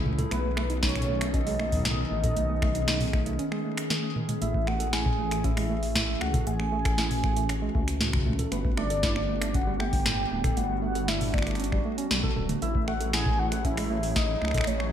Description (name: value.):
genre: IDM.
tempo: 117 BPM.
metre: 4/4.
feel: straight.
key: A lydian.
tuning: A4 = 444 Hz.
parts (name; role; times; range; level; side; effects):
warbly tape-like pad; sustained chords; 0.0-14.9 s; D#3 to A4; -34 LUFS; right 1 dB; chorus, built-in reverb, vintage 12-bit sampler grit.
dark detuned saw bass; bass; 0.0-14.9 s; D1 to C#2; -30 LUFS; left 1 dB; none.
tine electric piano; arpeggios; 0.1-14.9 s; A2 to A4; -34 LUFS; right 4 dB; vintage 12-bit sampler grit, digital delay.
booming analog drum machine; drums; 0.1-14.9 s; finger snaps, hi-hat, snare drum, toms; -31 LUFS; equal; gated reverb.
warm velvety synth lead; melody; 0.3-14.9 s; B4 to G#5; -32 LUFS; equal; chorus, tremolo, ping-pong delay.
electronic kick drum; drums; 0.8-14.6 s; none; -29 LUFS; equal; none.
room: moderate plate reverb, RT60 1.4 s.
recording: bright 1980s-style digital production.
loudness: -24 LUFS.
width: side -9 dB against mid.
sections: 0.0-14.9 A section.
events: break 3.4-4.4.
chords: 0.3 B9; 4.4 Amaj7; 8.5 Gmaj7; 12.6 F#m9/A.